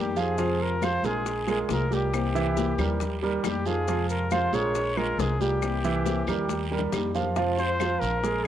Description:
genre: latin, Cuban son and guajira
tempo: 137 BPM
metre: 4/4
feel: straight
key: F minor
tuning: A4 = 443 Hz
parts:
  - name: breathy trumpet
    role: melody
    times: 0.0-8.5 s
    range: G4 to Db5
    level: -30 LUFS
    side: left 2 dB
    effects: none
  - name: nylon-string guitar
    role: accompaniment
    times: 0.0-8.3 s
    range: C3 to G4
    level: -33 LUFS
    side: left 8 dB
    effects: cassette tape
  - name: warm grand piano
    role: arpeggios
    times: 0.0-8.4 s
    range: E3 to F5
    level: -28 LUFS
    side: right 6 dB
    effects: cassette tape
  - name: upright bass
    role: bass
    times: 0.0-8.5 s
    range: Bb1 to F2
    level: -31 LUFS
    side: equal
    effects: none
  - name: bongos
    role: percussion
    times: 0.2-8.5 s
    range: none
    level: -37 LUFS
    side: left 9 dB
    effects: none
  - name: congas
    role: percussion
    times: 0.2-8.5 s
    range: none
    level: -37 LUFS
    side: left 8 dB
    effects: none
  - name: guiro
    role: percussion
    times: 0.2-8.5 s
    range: none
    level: -41 LUFS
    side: right 8 dB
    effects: none
  - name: maracas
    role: percussion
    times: 0.2-8.5 s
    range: none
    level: -46 LUFS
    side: left 10 dB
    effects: none
  - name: claves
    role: percussion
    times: 0.8-8.0 s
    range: none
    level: -39 LUFS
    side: left 7 dB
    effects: none
room: moderate spring reverb, RT60 1.5 s, studio reverb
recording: home recording on cassette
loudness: -24 LUFS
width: side -10 dB against mid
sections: 0.0-7.4 A section; 7.4-8.5 B section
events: drum fill 6.5-7.4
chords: 0.4 Fm; 1.3 Bbm7; 2.1 C7; 3.0 Eb; 3.9 Fm; 4.7 Bbm7; 5.6 C7; 6.5 Eb; 7.4 Fm

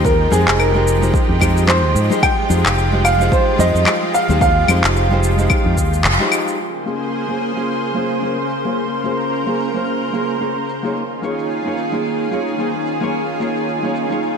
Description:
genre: sunset chillout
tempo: 110 BPM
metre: 4/4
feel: swing 58% on 16ths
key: Bb dorian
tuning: A4 = 440 Hz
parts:
  - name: warm grand piano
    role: melody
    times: 0.0-6.0 s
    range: Ab4 to G5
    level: -19 LUFS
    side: right 1 dB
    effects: wide subtle chorus, digital delay
  - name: nylon-string guitar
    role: accompaniment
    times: 0.0-14.4 s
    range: Ab3 to Db5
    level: -22 LUFS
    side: moving between left 4 dB and right 5 dB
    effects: auto-pan, low-pass filter, digital delay
  - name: lush unison pad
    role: sustained chords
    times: 0.0-14.4 s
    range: Db3 to C5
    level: -21 LUFS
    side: equal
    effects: chorus
  - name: fingered electric bass with an envelope filter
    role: bass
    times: 0.0-6.2 s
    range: F1 to Ab2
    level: -17 LUFS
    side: equal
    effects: none
  - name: electronic kick drum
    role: drums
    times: 0.0-5.9 s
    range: none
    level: -19 LUFS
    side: equal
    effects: overdrive, small room ambience
  - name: electronic shaker, handclaps and claves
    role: drums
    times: 0.1-14.4 s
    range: none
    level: -20 LUFS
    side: left 2 dB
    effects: low-pass filter on perc, small room ambience, low-pass filter on snare
room: moderate lush hall reverb, RT60 2.2 s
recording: bright 1980s-style digital production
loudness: -15 LUFS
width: side -6 dB against mid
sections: 0.0-6.6 A section; 6.6-14.4 B section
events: band accent 6.0; filter sweep on nylon-string guitar 6.6-14.4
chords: 0.0 Fm9; 6.6 Bbm9; 11.0 Eb9sus4

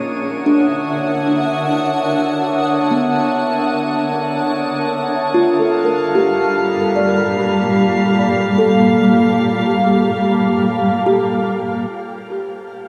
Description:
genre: ambient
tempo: 74 BPM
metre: 4/4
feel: straight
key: unclear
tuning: A4 = 440 Hz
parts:
  - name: granular cloud pad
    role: sustained chords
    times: 0.0-12.9 s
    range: G3 to A5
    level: -19 LUFS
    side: equal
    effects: built-in reverb
  - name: drifting glass-harmonics texture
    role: texture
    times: 0.0-11.9 s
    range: Db5 to F6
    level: -26 LUFS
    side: equal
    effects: chorus, built-in reverb
  - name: kalimba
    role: arpeggios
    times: 0.5-12.9 s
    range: Cb4 to D5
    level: -22 LUFS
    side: equal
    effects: tape echo
room: wet shimmer reverb, RT60 8.3 s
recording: none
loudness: -16 LUFS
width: mono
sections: 0.0-11.9 A section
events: none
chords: 0.0 Dmaj7; 5.3 Gm7; 11.9 Dbmaj13 (rootless)

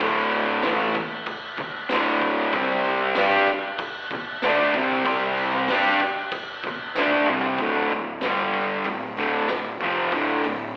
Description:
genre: garage rock duo or trio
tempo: 95 BPM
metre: 4/4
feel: straight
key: D minor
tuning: A4 = 440 Hz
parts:
  - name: fuzz guitar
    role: riff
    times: 0.0-10.7 s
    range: D2 to G4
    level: -24 LUFS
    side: equal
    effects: distortion, slapback echo
  - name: fuzz picked electric bass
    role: bass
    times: 0.0-10.7 s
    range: D1 to G2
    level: -33 LUFS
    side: equal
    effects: overdrive
  - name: raw garage drum kit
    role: drums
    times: 0.0-10.6 s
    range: crash cymbal, hi-hat, kick drum, snare drum, toms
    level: -31 LUFS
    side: equal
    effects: none
  - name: tambourine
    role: percussion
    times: 0.6-9.6 s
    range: none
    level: -48 LUFS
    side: equal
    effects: none
room: moderate club reverb, RT60 0.8 s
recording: live gig heard through the venue's PA, recital hall reverb, telephone sound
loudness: -23 LUFS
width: mono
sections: 0.0-7.6 A section; 7.6-10.8 B section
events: drum fill 7.0-7.6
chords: 0.0 D5; 2.5 C5; 7.6 D5; 8.2 G5; 8.9 Dm

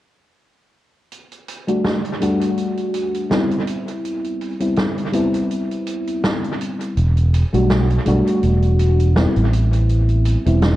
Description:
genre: vaporwave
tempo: 82 BPM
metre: 4/4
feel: swing 55% on 16ths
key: E minor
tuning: A4 = 440 Hz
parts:
  - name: swinging big-band drum kit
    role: drums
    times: 1.1-10.8 s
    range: hi-hat, snare drum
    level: -25 LUFS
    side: right 1 dB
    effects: tape echo
  - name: mellow FM electric piano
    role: accompaniment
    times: 1.7-10.8 s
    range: G3 to F#4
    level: -20 LUFS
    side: left 1 dB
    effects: wide subtle chorus, tape echo
  - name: fretless electric bass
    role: bass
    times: 7.0-10.8 s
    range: E1 to B1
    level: -15 LUFS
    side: equal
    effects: none
room: light reverb, studio ambience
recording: echo-heavy mix, cassette tape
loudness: -16 LUFS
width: side -15 dB against mid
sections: 1.1-10.8 A section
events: none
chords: 1.1 Em11; 3.7 Cmaj7/G; 7.0 Em11; 9.5 Am9

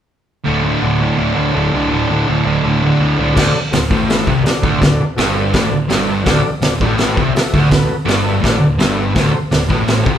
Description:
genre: garage rock duo or trio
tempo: 166 BPM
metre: 4/4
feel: straight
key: D mixolydian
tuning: A4 = 440 Hz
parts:
  - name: fuzz guitar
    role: riff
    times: 0.4-10.2 s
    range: D2 to D3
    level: -14 LUFS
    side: equal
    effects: distortion
  - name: fuzz picked electric bass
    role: bass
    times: 0.5-10.2 s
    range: D1 to D2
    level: -22 LUFS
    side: equal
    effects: overdrive
  - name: combo organ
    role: sustained chords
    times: 3.3-10.1 s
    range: F#4 to E5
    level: -23 LUFS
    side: left 2 dB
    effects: none
  - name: vintage drum kit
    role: drums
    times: 3.4-10.1 s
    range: crash cymbal, hi-hat, kick drum, snare drum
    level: -17 LUFS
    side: equal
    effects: none
room: wet large studio reverb, RT60 1.1 s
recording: band playing live in one room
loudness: -12 LUFS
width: side -9 dB against mid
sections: 0.5-3.4 A section; 3.4-10.2 B section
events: none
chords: 0.5 D5; 3.4 D

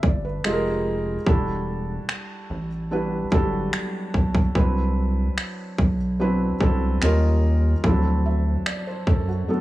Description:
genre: contemporary R&B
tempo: 73 BPM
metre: 4/4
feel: straight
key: E minor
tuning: A4 = 440 Hz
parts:
  - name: felt-muted upright piano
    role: accompaniment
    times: 0.0-9.6 s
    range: F3 to E5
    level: -25 LUFS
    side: right 1 dB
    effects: none
  - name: rubbery square bass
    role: bass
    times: 0.0-9.4 s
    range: E1 to F#2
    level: -23 LUFS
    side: equal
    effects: none
  - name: trap drum kit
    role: drums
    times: 0.0-9.3 s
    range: finger snaps, kick drum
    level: -23 LUFS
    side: equal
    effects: vintage 12-bit sampler grit
room: digital ambience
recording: none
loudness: -20 LUFS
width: side -16 dB against mid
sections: 0.0-9.6 A section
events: none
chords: 0.4 Fm11; 1.3 Em11; 4.6 Cmaj9#11; 7.0 D#9; 7.8 D9

